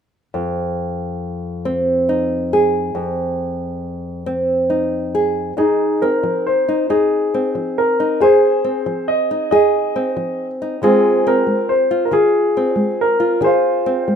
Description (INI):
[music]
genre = acoustic folk-pop ballad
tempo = 46 BPM (dotted quarters)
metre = 6/8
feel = straight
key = F minor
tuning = A4 = 440 Hz
[part]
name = nylon-string guitar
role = accompaniment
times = 0.3-14.2 s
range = F2 to Ab4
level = -18 LUFS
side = right 1 dB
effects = none
[part]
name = clear concert grand piano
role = melody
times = 5.6-14.2 s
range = C4 to Eb5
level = -16 LUFS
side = left 1 dB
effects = none
[sound]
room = light reverb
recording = minimal, uncompressed stereo recording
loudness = -15 LUFS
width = side -7 dB against mid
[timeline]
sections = 0.3-5.6 A section; 5.6-14.2 B section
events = none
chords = 0.3 Fm7; 10.8 Ab6/Eb